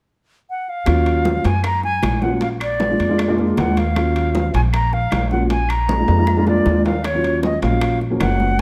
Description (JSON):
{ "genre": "Afro-Cuban jazz", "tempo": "155 BPM", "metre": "4/4", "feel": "straight", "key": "Eb harmonic minor", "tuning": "A4 = 441 Hz", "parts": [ { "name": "concert flute", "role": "melody", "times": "0.5-8.6 s", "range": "Db5 to Bb5", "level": "-25 LUFS", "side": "equal", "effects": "none" }, { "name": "dark baby grand piano", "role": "accompaniment", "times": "0.9-8.5 s", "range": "F3 to F4", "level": "-22 LUFS", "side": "equal", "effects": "none" }, { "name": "upright bass", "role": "bass", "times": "0.9-8.6 s", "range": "Gb1 to Gb2", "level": "-22 LUFS", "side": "equal", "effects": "none" }, { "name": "bongos", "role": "percussion", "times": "0.9-8.6 s", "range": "none", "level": "-32 LUFS", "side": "equal", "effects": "none" }, { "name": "claves", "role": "percussion", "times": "0.9-8.4 s", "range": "none", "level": "-38 LUFS", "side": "equal", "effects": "none" }, { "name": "congas", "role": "percussion", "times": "0.9-8.6 s", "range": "none", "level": "-29 LUFS", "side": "equal", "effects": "none" }, { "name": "timbales", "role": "percussion", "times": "0.9-8.6 s", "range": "none", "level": "-31 LUFS", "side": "equal", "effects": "none" } ], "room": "moderate large studio reverb, RT60 1.3 s", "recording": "none", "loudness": "-18 LUFS", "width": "mono", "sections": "0.9-7.0 A section; 7.0-8.6 B section", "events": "drum fill 5.9-7.0", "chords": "0.0 N.C.; 0.9 Ebm9; 2.4 Bb7; 4.0 Ebm9; 5.5 Bb7; 7.0 Ebm9", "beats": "0.09 0.48 | 0.87 1.25 1.64 2.03 | 2.41 2.80 3.19 3.57 | 3.96 4.35 4.73 5.12 | 5.50 5.89 6.28 6.66 | 7.05 7.43 7.82 8.20 | 8.59" }